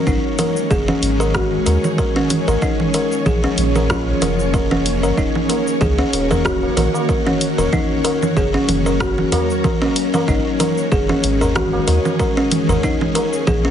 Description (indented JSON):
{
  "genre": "organic downtempo",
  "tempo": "94 BPM",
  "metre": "4/4",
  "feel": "swing 56% on 16ths",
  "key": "unclear",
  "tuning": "A4 = 440 Hz",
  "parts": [
    { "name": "ethereal airy pad", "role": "sustained chords", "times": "0.0-13.7 s", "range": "Eb3 to Db5", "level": "-21 LUFS", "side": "left 1 dB", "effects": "ensemble chorus, built-in reverb, sidechain pumping" },
    { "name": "buzzing kalimba", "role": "arpeggios", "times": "0.0-13.7 s", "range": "Db4 to Bb4", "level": "-19 LUFS", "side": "left 1 dB", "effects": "ping-pong delay" },
    { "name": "warm sub bass", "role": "bass", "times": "0.1-13.7 s", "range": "Eb1 to Eb2", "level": "-20 LUFS", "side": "equal", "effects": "sidechain pumping" },
    { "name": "deep house drum kit", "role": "drums", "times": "0.1-13.6 s", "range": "cabasa, congas, hi-hat, rim click", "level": "-23 LUFS", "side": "right 2 dB", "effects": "none" },
    { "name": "electronic kick drum", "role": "drums", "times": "0.1-13.6 s", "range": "none", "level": "-22 LUFS", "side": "equal", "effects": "none" },
    { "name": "tabla", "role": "percussion", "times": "5.5-13.4 s", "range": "none", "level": "-28 LUFS", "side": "equal", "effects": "none" }
  ],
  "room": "moderate echo chamber reverb, RT60 1.7 s, digital ambience",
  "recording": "heavily compressed radio sound, multiband compression, nothing above 10.9 kHz",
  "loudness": "-15 LUFS",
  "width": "side -9 dB against mid",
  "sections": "0.0-13.7 A section",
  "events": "none",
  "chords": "0.0 Gb (rootless); 2.6 Bbm7; 5.2 Ebm7; 7.7 Gb; 12.8 Bbm7",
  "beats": "| 0.07 0.71 1.34 1.98 | 2.62 3.26 3.90 4.54 | 5.17 5.81 6.45 7.09 | 7.73 8.37 9.01 9.64 | 10.28 10.92 11.56 12.20 | 12.84 13.47"
}